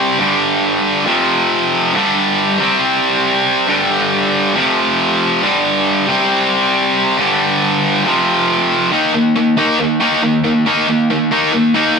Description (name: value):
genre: rock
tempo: 138 BPM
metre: 4/4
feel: straight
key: unclear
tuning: A4 = 439 Hz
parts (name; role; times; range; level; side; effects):
- tight distorted guitar; solo; 0.0-12.0 s; F2 to Eb4; -12 LUFS; equal; distortion
room: moderate stone room reverb, RT60 1.0 s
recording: band playing live in one room, nothing above 10.3 kHz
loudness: -12 LUFS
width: side -5 dB against mid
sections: 0.0-8.9 A section; 8.9-12.0 B section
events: none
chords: 0.2 G5; 1.1 F5; 1.9 G5; 2.6 C5; 3.7 G5; 4.6 F5; 5.4 G5; 6.1 C5; 7.2 G5; 8.1 F5; 8.9 Eb5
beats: | 0.20 0.63 1.07 1.50 | 1.94 2.38 2.81 3.25 | 3.68 4.12 4.56 4.99 | 5.43 5.87 6.30 6.74 | 7.18 7.61 8.05 8.49 | 8.92 9.36 9.80 10.23 | 10.67 11.11 11.54